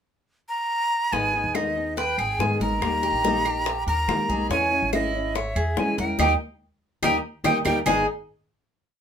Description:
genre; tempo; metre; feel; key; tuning
latin, Cuban son and guajira; 142 BPM; 4/4; straight; G# harmonic minor; A4 = 441 Hz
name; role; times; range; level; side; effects
breathy bright jazz flute; melody; 0.5-8.1 s; D#5 to A#5; -24 LUFS; right 1 dB; none
nylon-string guitar; accompaniment; 1.1-8.0 s; G#2 to G#4; -29 LUFS; left 3 dB; none
Cuban tres; arpeggios; 1.1-8.1 s; G#3 to C#5; -27 LUFS; right 1 dB; none
upright bass; bass; 1.1-8.1 s; G#1 to D#3; -30 LUFS; equal; none
bongos; percussion; 1.1-8.0 s; none; -31 LUFS; left 6 dB; none
congas; percussion; 1.1-8.0 s; none; -33 LUFS; left 1 dB; none
claves; percussion; 1.5-8.0 s; none; -32 LUFS; right 4 dB; none
room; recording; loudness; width
light reverb; minimal, uncompressed stereo recording; -21 LUFS; side -8 dB against mid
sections
0.0-1.1 pickup bar; 1.1-7.9 verse; 7.9-9.0 final chord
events
band accent 6.2-7.9; drum fill 7.2-7.9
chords
0.0 N.C.; 1.1 G#m; 2.8 D#; 4.5 C#m; 6.2 D#; 7.9 G#m

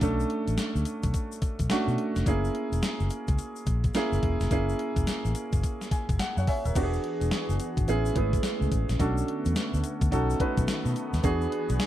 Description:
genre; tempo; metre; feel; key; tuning
R&B, new jack swing; 107 BPM; 4/4; swing 63% on 16ths; B dorian; A4 = 443 Hz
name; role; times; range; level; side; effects
warm baby grand piano; accompaniment; 0.0-11.9 s; A3 to G#5; -30 LUFS; right 2 dB; none
vintage muted fingered electric bass; bass; 0.0-11.8 s; D#1 to B2; -28 LUFS; equal; none
gated 80s digital drum machine; drums; 0.0-11.9 s; crash cymbal, hi-hat, kick drum, snare drum; -29 LUFS; left 1 dB; gated reverb, gated reverb snare, overdrive
tube shaker; percussion; 0.0-11.9 s; none; -46 LUFS; left 10 dB; none
sweeping resonant pad; sustained chords; 6.8-11.9 s; D3 to G#4; -34 LUFS; left 1 dB; wide subtle chorus
room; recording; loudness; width
little or no reverb; dry, close 1970s-style studio recording; -25 LUFS; side -12 dB against mid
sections
0.0-6.7 A section; 6.7-11.9 B section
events
grand piano fill 5.6-6.7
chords
0.0 Bm9; 2.3 F#7; 6.7 E7; 7.9 Amaj7; 9.0 Bm7; 10.1 B7; 11.2 E7

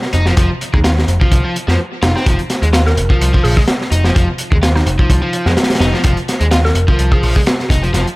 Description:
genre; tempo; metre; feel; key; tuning
breakbeat, breaks; 127 BPM; 4/4; swing 54% on 16ths; F minor; A4 = 440 Hz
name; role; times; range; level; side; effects
crunchy breakbeat drum kit; drums; 0.0-8.2 s; hi-hat, kick drum, snare drum; -14 LUFS; equal; tape echo
overdriven electric guitar; riff; 0.1-8.1 s; F3 to F4; -20 LUFS; equal; vintage 12-bit sampler grit, tape echo
overdriven picked electric bass; bass; 0.1-8.0 s; F1 to F2; -15 LUFS; equal; none
mallet-like synth pluck; melody; 0.7-7.3 s; Eb4 to Bb4; -24 LUFS; equal; chorus, AM radio sound, tape echo
room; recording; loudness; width
light reverb, small room ambience; echo-heavy mix; -11 LUFS; side -21 dB against mid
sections
0.0-8.2 A section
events
none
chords
0.0 F7(no3)

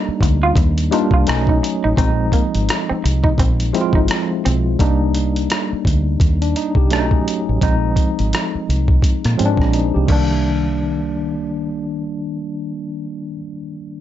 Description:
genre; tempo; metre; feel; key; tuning
R&B, neo-soul; 85 BPM; 4/4; swing 59% on 16ths; C minor; A4 = 440 Hz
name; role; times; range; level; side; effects
tine electric piano; accompaniment; 0.0-14.0 s; Eb3 to G4; -20 LUFS; left 1 dB; overdrive, medium stereo tremolo
deep dub fingered electric bass; bass; 0.1-13.3 s; Ab1 to Bb2; -19 LUFS; equal; none
electric guitar through a small old amp; second line; 0.2-4.6 s; Bb3 to F4; -22 LUFS; right 3 dB; none
boom bap sampler-style drum kit; drums; 0.2-10.3 s; crash cymbal, hi-hat, kick drum, rim click; -18 LUFS; equal; none
room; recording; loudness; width
light reverb; nothing above 7.7 kHz; -15 LUFS; side -12 dB against mid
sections
0.0-10.4 A section; 10.4-13.3 B section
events
drum fill 9.7-10.4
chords
0.0 Cm9 (rootless); 1.3 B9; 2.0 Bb9sus4; 4.8 Cm9; 6.9 B9; 7.6 Bb9sus4; 10.1 Cm9

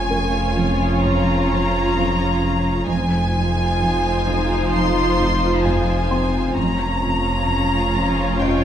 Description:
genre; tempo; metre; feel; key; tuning
cinematic, suspense film score; 65 BPM; 4/4; straight; unclear; A4 = 439 Hz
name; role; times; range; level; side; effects
muted chamber violin section; melody; 0.0-8.6 s; G5 to C6; -24 LUFS; equal; none
muted studio violin section; second line; 0.0-8.6 s; F4 to Db5; -25 LUFS; left 2 dB; none
muted studio viola section; accompaniment; 0.0-8.6 s; F3 to Eb4; -24 LUFS; right 1 dB; none
muted studio cello section; bass; 0.0-8.6 s; F2; -25 LUFS; right 1 dB; none
muted studio double bass section; bass; 0.0-8.6 s; F1; -27 LUFS; right 2 dB; none
warm sub bass; drone; 0.0-8.6 s; F1; -26 LUFS; equal; none
muted studio cello section; riff; 0.1-8.6 s; F2 to F3; -28 LUFS; right 1 dB; none
felt-muted upright piano; texture; 0.1-8.6 s; C4 to C6; -29 LUFS; left 3 dB; none
room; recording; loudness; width
wet recital hall reverb, RT60 1.6 s; recorded in a church or concert hall; -17 LUFS; side -10 dB against mid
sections
0.0-8.6 A section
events
none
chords
0.0 Bbm/F; 2.9 Fm7; 6.6 Bbm/F

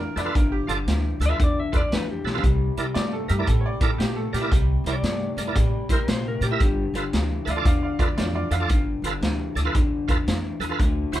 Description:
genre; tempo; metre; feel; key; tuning
electric blues shuffle; 115 BPM; 4/4; swing 64% on 8ths; unclear; A4 = 440 Hz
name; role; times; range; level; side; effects
bright upright piano; second line; 0.0-8.8 s; F4 to F5; -31 LUFS; right 3 dB; none
electric guitar through a small old amp; riff; 0.0-11.2 s; G2 to A3; -30 LUFS; left 4 dB; none
upright bass; bass; 0.0-11.2 s; G1 to Bb2; -26 LUFS; equal; none
bright tonewheel organ; accompaniment; 0.2-11.2 s; E4 to E5; -28 LUFS; right 4 dB; slow rotary speaker, overdrive, chorus vibrato
vintage drum kit; drums; 0.2-11.2 s; hi-hat, kick drum, snare drum, toms; -24 LUFS; equal; none
clean lap steel guitar; melody; 1.3-8.0, 11.2 s; G4 to E5; -31 LUFS; left 3 dB; none
room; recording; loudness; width
light reverb; band playing live in one room; -21 LUFS; side -13 dB against mid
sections
0.0-11.2 A section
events
drum fill 2.2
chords
0.0 G7; 2.4 C7; 6.6 G7

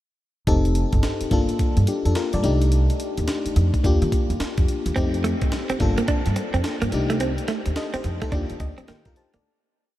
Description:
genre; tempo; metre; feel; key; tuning
R&B, new jack swing; 107 BPM; 4/4; swing 63% on 16ths; C dorian; A4 = 439 Hz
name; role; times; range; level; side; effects
FM electric piano; accompaniment; 0.5-9.6 s; A3 to A5; -25 LUFS; left 3 dB; chorus
upright bass; bass; 0.5-9.4 s; F1 to Eb3; -22 LUFS; equal; none
breakbeat sampler-style drum kit; drums; 0.5-9.4 s; hi-hat, kick drum, snare drum; -26 LUFS; equal; none
direct-recorded clean electric guitar; riff; 5.0-9.4 s; A3 to D4; -27 LUFS; right 4 dB; lush chorus
room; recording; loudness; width
light reverb, digital ambience; none; -20 LUFS; side -14 dB against mid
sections
0.5-9.4 verse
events
fade-out 7.2-9.4; FM electric piano fill 8.3-9.4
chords
0.5 F7; 1.3 Gm7; 2.4 Cm69; 3.8 Ebmaj7; 5.0 F7; 5.8 Gm7; 6.9 Cm69; 8.3 Ebmaj7

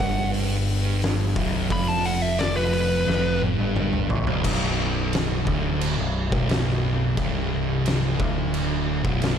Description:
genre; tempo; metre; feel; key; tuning
stoner and doom metal; 88 BPM; 4/4; straight; unclear; A4 = 441 Hz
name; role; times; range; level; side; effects
fuzz lead guitar; melody; 0.0-3.4 s; B4 to B5; -27 LUFS; left 2 dB; distortion, tape echo
thick fuzz guitar; riff; 0.0-9.4 s; B1 to A2; -28 LUFS; left 7 dB; distortion
thick fuzz guitar; riff; 0.0-9.4 s; B1 to A2; -26 LUFS; right 9 dB; distortion
growling picked electric bass; bass; 0.0-9.4 s; B0 to A1; -28 LUFS; equal; overdrive
oversized low-tuned drum kit; drums; 0.0-9.4 s; crash cymbal, hi-hat, kick drum, snare drum, toms; -27 LUFS; left 1 dB; none
room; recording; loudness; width
light reverb; none; -21 LUFS; side -8 dB against mid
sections
0.0-4.4 A section; 4.4-9.4 B section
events
lead electric guitar solo 0.0-4.4; drum fill 3.1-4.4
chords
0.0 B5; 4.4 Bm

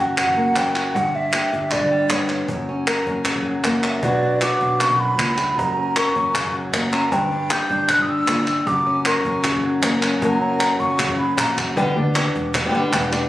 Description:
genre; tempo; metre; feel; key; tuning
flamenco; 155 BPM; 4/4; straight; F# phrygian dominant; A4 = 440 Hz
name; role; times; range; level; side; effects
flamenco guitar; melody; 0.0-13.3 s; F#2 to A#4; -22 LUFS; left 1 dB; none
breathy mellow concert flute; second line; 0.0-11.6 s; C#5 to G6; -21 LUFS; equal; none
hollow-body short-scale fingered electric bass; bass; 0.0-13.2 s; E1 to D2; -29 LUFS; right 1 dB; none
cajon; percussion; 0.2-13.3 s; none; -31 LUFS; right 1 dB; none
palmas hand claps; percussion; 0.2-13.3 s; none; -23 LUFS; equal; none
room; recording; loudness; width
moderate studio reverb, RT60 0.5 s; recorded on a phone in the room, studio reverb; -17 LUFS; side -15 dB against mid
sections
0.0-11.8 A section; 11.8-13.3 B section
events
flute solo 0.0-11.8; drum fill 4.8-5.6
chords
0.0 F#; 0.9 G; 2.5 F#; 4.0 Bm; 5.6 F#; 7.1 G5; 8.7 F#; 11.8 G

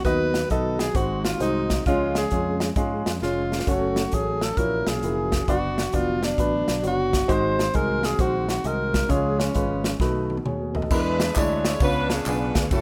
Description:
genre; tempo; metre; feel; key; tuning
uptempo gospel; 133 BPM; 4/4; swing 65% on 8ths; unclear; A4 = 444 Hz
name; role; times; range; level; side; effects
breathy tenor saxophone; melody; 0.0-10.0 s; C#4 to B#4; -29 LUFS; equal; none
mellow tonewheel organ; sustained chords; 0.0-12.8 s; D3 to C#6; -35 LUFS; equal; none
fingered electric bass; bass; 0.0-12.8 s; E#1 to G#2; -32 LUFS; equal; none
natural country drum kit; drums; 0.0-12.8 s; crash cymbal, hi-hat, kick drum, ride cymbal, snare drum, toms; -29 LUFS; equal; none
warm upright piano; accompaniment; 0.1-12.8 s; G#2 to D#5; -29 LUFS; equal; none
warm saxophone section; melody; 10.9-12.8 s; C#4 to C#5; -30 LUFS; equal; slapback echo
tambourine and handclaps; percussion; 10.9-12.8 s; none; -39 LUFS; equal; none
room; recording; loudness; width
light reverb, small room ambience; rough home demo mix; -23 LUFS; mono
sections
0.0-10.9 A section; 10.9-12.8 B section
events
drum fill 3.2-3.7, 10.0-10.9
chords
0.0 B/D#; 1.0 G#7; 1.9 C#; 3.7 F#m; 4.6 F#7/A#; 5.5 Bm; 7.3 G#7; 9.1 C#; 10.0 B7; 10.9 E7; 11.8 C#7b9

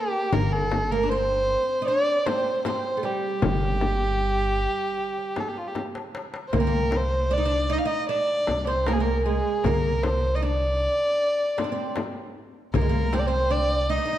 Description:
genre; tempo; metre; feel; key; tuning
Turkish makam ensemble; 77 BPM; 4/4; straight; G makam ussak, C makam nihavent from 6.5 s; A4 = 440 Hz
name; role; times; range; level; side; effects
dark violin; melody; 0.0-14.2 s; F4 to F5; -25 LUFS; equal; none
oud; second line; 0.0-14.2 s; G3 to Eb4; -30 LUFS; right 4 dB; none
upright bass; bass; 0.3-14.0 s; G1 to C2; -27 LUFS; equal; none
darbuka; percussion; 0.3-14.0 s; none; -34 LUFS; left 3 dB; none
frame drum; percussion; 0.3-13.3 s; none; -30 LUFS; left 4 dB; none
room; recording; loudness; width
wet recital hall reverb, RT60 1.7 s; dark, warm production; -22 LUFS; side -12 dB against mid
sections
0.0-6.5 A section; 6.5-14.2 B section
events
drum fill 5.8-6.5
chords
none

